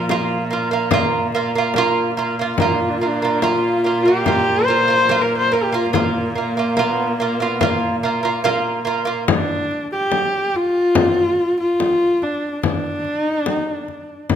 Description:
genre	mongolian traditional, Mongolian folk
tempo	72 BPM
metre	4/4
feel	straight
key	Bb gong mode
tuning	A4 = 439 Hz
part	warm horsehead fiddle	melody	0.0-14.3 s	F3 to C5	-19 LUFS	left 1 dB	none
part	lute	arpeggios	0.0-9.2 s	Bb3 to F4	-19 LUFS	right 4 dB	none
part	clear cello	drone	0.0-9.4 s	Bb2	-26 LUFS	right 1 dB	none
part	frame drum	percussion	0.1-14.4 s	none	-22 LUFS	left 5 dB	none
room	moderate recital hall reverb, RT60 1.4 s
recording	close, detailed microphones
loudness	-16 LUFS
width	side -8 dB against mid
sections	0.0-9.3 A section; 9.3-14.4 B section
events	none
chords	0.0 Bb5; 9.3 N.C.

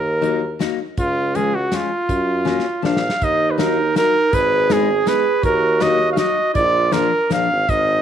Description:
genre	alpine folk, alpine dance band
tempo	161 BPM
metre	3/4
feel	swing 53% on 8ths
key	F# major, Eb harmonic minor from 3.2 s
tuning	A4 = 441 Hz
part	clear flugelhorn	melody	0.0-8.0 s	E#4 to F5	-18 LUFS	right 1 dB	none
part	clear tuba	bass	0.0-8.0 s	Ab1 to F#2	-24 LUFS	equal	none
part	fingerpicked steel-string acoustic guitar	accompaniment	0.2-7.5 s	E#3 to D#4	-23 LUFS	left 10 dB	none
part	loose indie drum kit	drums	0.2-7.8 s	hi-hat, kick drum, snare drum	-25 LUFS	equal	none
part	mellow clarinet	second line	3.2-8.0 s	Eb4 to Ab4	-22 LUFS	right 10 dB	none
room	moderate plate reverb, RT60 1.4 s, small room ambience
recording	1960s-style stereo with parts hard left and right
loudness	-16 LUFS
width	side -9 dB against mid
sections	0.0-3.2 A section; 3.2-8.0 B section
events	drum fill 2.5-3.2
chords	0.0 D#m; 1.0 C#; 2.1 F#; 2.8 A#; 3.2 Ebm; 4.3 Abm; 5.4 Ebm; 6.6 Bb

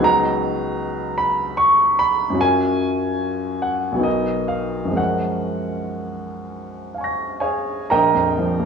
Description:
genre	classical, impressionist solo piano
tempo	61-77 BPM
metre	3/4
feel	rubato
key	F# major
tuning	A4 = 440 Hz
part	warm baby grand piano	solo	0.0-8.7 s	Bb1 to A#6	-18 LUFS	right 1 dB	none
room	moderate recital hall reverb, RT60 1.5 s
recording	worn, warbling old tape, cassette tape, warbly pitch drift, small room ambience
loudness	-18 LUFS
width	side -6 dB against mid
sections	0.0-7.9 A section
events	none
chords	0.0 Bmaj7/C#; 2.4 F#maj7; 4.1 Bmaj7; 5.0 F#maj9; 7.9 Bb5

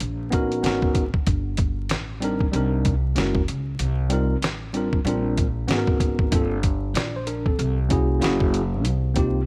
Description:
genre	hip hop, jazz-hop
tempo	95 BPM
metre	4/4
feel	swing 60% on 16ths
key	unclear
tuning	A4 = 438 Hz
part	upright bass	bass	0.0-9.4 s	F#1 to C#2	-28 LUFS	equal	none
part	dusty soul sampler-style drum kit	drums	0.0-9.3 s	hi-hat, kick drum, snare drum	-26 LUFS	equal	none
part	tine electric piano	accompaniment	0.3-9.4 s	G3 to D5	-27 LUFS	equal	overdrive
room	little or no reverb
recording	vinyl crackle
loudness	-23 LUFS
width	mono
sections	0.0-9.5 A section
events	none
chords	0.0 Bmaj9/A#; 0.6 Abm11; 1.3 Gmadd9; 2.5 Cm9; 3.2 F#9; 3.8 F9sus4/C; 5.1 Bb69; 5.7 Abm11; 6.3 Gm11; 7.6 C7b9b13; 8.2 F#9; 8.8 F9sus4/C

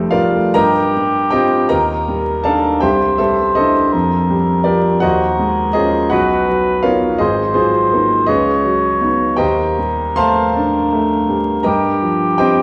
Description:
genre	classical, impressionist duo for cor anglais and grand piano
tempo	54 BPM (dotted quarters)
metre	6/8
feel	rubato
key	unclear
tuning	A4 = 443 Hz
part	mellow cor anglais	melody	0.0-12.6 s	G4 to C#5	-20 LUFS	equal	none
part	clear grand piano	accompaniment	0.0-12.6 s	F1 to C6	-17 LUFS	equal	none
room	wet recital hall reverb, RT60 1.6 s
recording	dark, warm production, vinyl crackle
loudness	-15 LUFS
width	mono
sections	0.6-12.6 A section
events	none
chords	0.0 Fadd9; 0.6 Gm7; 1.7 Ebmaj7; 2.8 Cadd9; 3.9 F9sus4; 5.0 Ebm11; 6.1 Bmaj7; 7.2 Ab9; 8.3 C#9sus4; 9.4 Ebmaj7#11; 11.7 Gm11

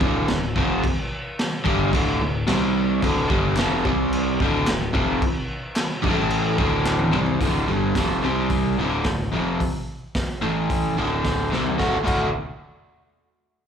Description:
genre	garage rock duo or trio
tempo	109 BPM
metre	4/4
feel	straight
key	unclear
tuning	A4 = 437 Hz
part	overdriven electric guitar	riff	0.0-12.3 s	D2 to F#4	-21 LUFS	equal	slapback echo
part	fuzz fingered electric bass	bass	0.0-12.3 s	D1 to C2	-28 LUFS	equal	overdrive
part	raw garage drum kit	drums	0.0-12.2 s	crash cymbal, hi-hat, kick drum, snare drum, toms	-26 LUFS	equal	none
part	group handclap	percussion	3.6-7.0 s	none	-32 LUFS	left 2 dB	slapback echo
room	small room ambience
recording	live gig heard through the venue's PA, club reverb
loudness	-20 LUFS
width	side -8 dB against mid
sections	0.0-7.4 A section; 7.4-11.8 B section; 11.8-13.7 C section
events	drum fill 6.9-7.4, 11.5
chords	0.0 D5; 2.5 C5; 3.0 D5; 3.8 C5; 4.4 D5; 6.0 A5; 6.6 D5; 8.2 C5; 8.8 D5; 10.4 A5; 11.0 D5; 11.8 D

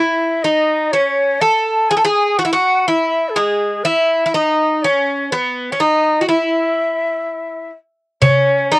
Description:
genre	Turkish makam ensemble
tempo	123 BPM (eighths)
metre	10/8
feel	straight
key	E makam rast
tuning	A4 = 440 Hz
part	Greek bouzouki	melody	0.0-8.8 s	G#3 to A4	-15 LUFS	equal	cassette tape
part	breathy bright ney	second line	0.0-8.8 s	G#4 to A5	-18 LUFS	left 1 dB	none
part	darbuka	percussion	8.2-8.4 s	none	-15 LUFS	right 1 dB	none
room	moderate booth ambience, RT60 0.2 s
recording	home recording on cassette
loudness	-13 LUFS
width	side -22 dB against mid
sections	0.0-8.2 A section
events	none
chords	none

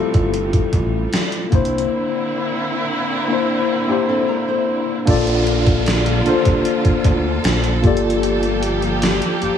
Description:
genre	contemporary R&B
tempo	76 BPM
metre	4/4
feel	straight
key	unclear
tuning	A4 = 440 Hz
part	mellow tine electric piano	accompaniment	0.0-9.6 s	G3 to D5	-19 LUFS	left 3 dB	medium stereo tremolo
part	warm studio string section	sustained chords	0.0-9.6 s	C3 to A4	-23 LUFS	right 1 dB	none
part	fat analog bass	bass	0.0-9.5 s	G1 to D2	-21 LUFS	equal	none
part	gated 80s digital drum machine	drums	0.1-9.6 s	hi-hat, kick drum, snare drum	-18 LUFS	equal	gated reverb, gated reverb snare
part	nylon-string guitar	arpeggios	3.9-5.0 s	Bb3 to C5	-25 LUFS	right 4 dB	tape echo
part	downlifter	sound effects	5.1-9.6 s	none	-28 LUFS	equal	none
room	digital ambience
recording	none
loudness	-15 LUFS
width	side -8 dB against mid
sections	0.0-5.1 A section; 5.1-9.6 B section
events	none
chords	0.0 Fmaj9; 1.5 C9; 5.1 Bbmaj7; 7.8 Gm9

